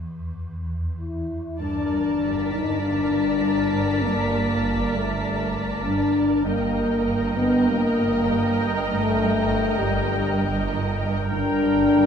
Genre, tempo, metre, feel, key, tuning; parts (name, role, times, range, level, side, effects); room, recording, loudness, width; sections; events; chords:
cinematic; 99 BPM; 4/4; straight; G minor; A4 = 439 Hz
swarming drone; drone; 0.0-12.1 s; G1 to E2; -34 LUFS; equal; built-in reverb
dark French horn section; sustained chords; 1.0-12.1 s; G3 to E4; -22 LUFS; left 2 dB
muted symphonic violin section; melody; 1.6-12.1 s; G5 to A5; -34 LUFS; left 4 dB
muted symphonic violin section; second line; 1.6-12.1 s; Bb4 to Eb5; -31 LUFS; right 2 dB
muted symphonic viola section; accompaniment; 1.6-12.1 s; Bb4; -31 LUFS; right 4 dB
muted symphonic cello section; riff; 1.6-12.1 s; G2 to G3; -32 LUFS; right 2 dB
muted symphonic cello section; bass; 1.6-12.1 s; G2; -30 LUFS; right 4 dB
muted symphonic double bass section; bass; 1.6-12.1 s; G1; -31 LUFS; right 4 dB
muted studio violin section; texture; 1.6-6.1 s; A5 to B6; -34 LUFS; left 4 dB
moderate scoring stage reverb, RT60 1.6 s; -20 LUFS; side -7 dB against mid
0.0-1.6 A section; 1.6-12.1 B section
break 0.0-1.6
0.0 N.C.; 1.6 Gmadd9; 6.5 Eb/G; 11.3 Gm